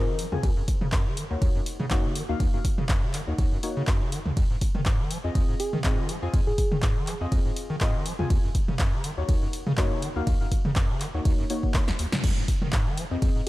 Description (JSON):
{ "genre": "acid house", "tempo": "122 BPM", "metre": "4/4", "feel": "swing 54% on 16ths", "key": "unclear", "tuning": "A4 = 440 Hz", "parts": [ { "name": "soft struck synth lead", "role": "melody", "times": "0.0-0.5, 5.6-7.0, 13.5 s", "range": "Ab4 to Bb4", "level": "-34 LUFS", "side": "equal", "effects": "chorus, dub echo" }, { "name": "acid bass, square", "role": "riff", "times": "0.0-13.4 s", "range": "Eb2 to F3", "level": "-31 LUFS", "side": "equal", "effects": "overdrive, lush chorus, sidechain pumping" }, { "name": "deep mellow chord stab", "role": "stabs", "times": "0.0-13.5 s", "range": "Bb3 to Ab5", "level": "-33 LUFS", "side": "left 3 dB", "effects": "chorus, cassette tape, digital delay" }, { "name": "punchy analog drum machine", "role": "drums", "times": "0.2-13.5 s", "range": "crash cymbal, handclaps, hi-hat, ride cymbal, snare drum, toms", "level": "-32 LUFS", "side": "equal", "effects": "none" }, { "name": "electronic kick drum", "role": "drums", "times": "0.4-13.3 s", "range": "none", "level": "-24 LUFS", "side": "equal", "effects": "none" } ], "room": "little or no reverb", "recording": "dark, warm production", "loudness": "-23 LUFS", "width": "side -18 dB against mid", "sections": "0.0-12.2 A section; 12.2-13.5 A section", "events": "drop 0.0-12.2, 12.2-13.5; drum fill 11.9-12.2; band accent 12.1", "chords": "0.4 Ebm7; 4.4 Fm7; 8.3 Ebm7; 12.2 Fm7" }